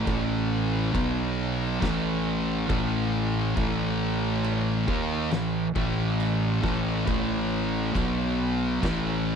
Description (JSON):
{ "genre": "stoner and doom metal", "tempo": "68 BPM", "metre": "4/4", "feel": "straight", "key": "unclear", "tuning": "A4 = 440 Hz", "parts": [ { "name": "thick fuzz guitar", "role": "riff", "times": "0.0-9.4 s", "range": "A2 to D#4", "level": "-29 LUFS", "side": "left 9 dB", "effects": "distortion" }, { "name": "thick fuzz guitar", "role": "riff", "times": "0.0-9.4 s", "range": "A2 to D#4", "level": "-29 LUFS", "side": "right 9 dB", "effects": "distortion" }, { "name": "thick fuzz guitar", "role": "riff", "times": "0.0-9.4 s", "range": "A2 to D#4", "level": "-32 LUFS", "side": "right 1 dB", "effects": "distortion" }, { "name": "fuzz fingered electric bass", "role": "bass", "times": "0.0-9.4 s", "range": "A1 to D#2", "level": "-31 LUFS", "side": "equal", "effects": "overdrive" }, { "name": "oversized low-tuned drum kit", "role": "drums", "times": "0.1-9.0 s", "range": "crash cymbal, kick drum, snare drum", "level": "-33 LUFS", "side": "equal", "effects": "none" } ], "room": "little or no reverb", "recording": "dry, close 1970s-style studio recording", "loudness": "-24 LUFS", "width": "side -7 dB against mid", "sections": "0.0-9.4 A section", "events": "none", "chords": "0.0 A5; 0.9 B5; 1.8 A5; 7.9 B5; 8.8 A5", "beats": "| 0.07 0.94 1.82 2.69 | 3.57 4.44 5.32 6.20 | 7.07 7.95 8.82" }